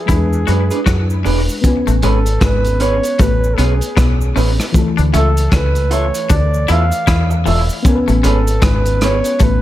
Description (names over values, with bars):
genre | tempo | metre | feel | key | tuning
lovers rock reggae | 77 BPM | 4/4 | swing 60% on 16ths | A major | A4 = 440 Hz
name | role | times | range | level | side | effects
warm flugelhorn | melody | 0.0-9.6 s | G#4 to F5 | -21 LUFS | right 1 dB | tape echo
mellow FM electric piano | accompaniment | 0.0-9.6 s | E3 to G#5 | -22 LUFS | left 3 dB | chorus
twangy electric guitar | riff | 0.1-9.6 s | E3 to F#4 | -25 LUFS | left 9 dB | dub echo
deep dub fingered electric bass | bass | 0.1-9.6 s | E1 to F#2 | -15 LUFS | equal | none
crunchy breakbeat drum kit | drums | 0.1-9.6 s | hi-hat, kick drum, rim click | -17 LUFS | equal | gated reverb
cabasa | percussion | 0.1-9.6 s | none | -33 LUFS | right 5 dB | none
electric guitar through a small old amp | stabs | 0.5-9.2 s | C#4 to E5 | -22 LUFS | right 3 dB | none
room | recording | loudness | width
studio ambience | none | -12 LUFS | side -14 dB against mid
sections
0.0-1.6 A section; 1.6-9.6 B section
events
none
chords
0.1 E7; 1.6 Amaj9; 4.7 Dmadd9; 7.8 Amaj9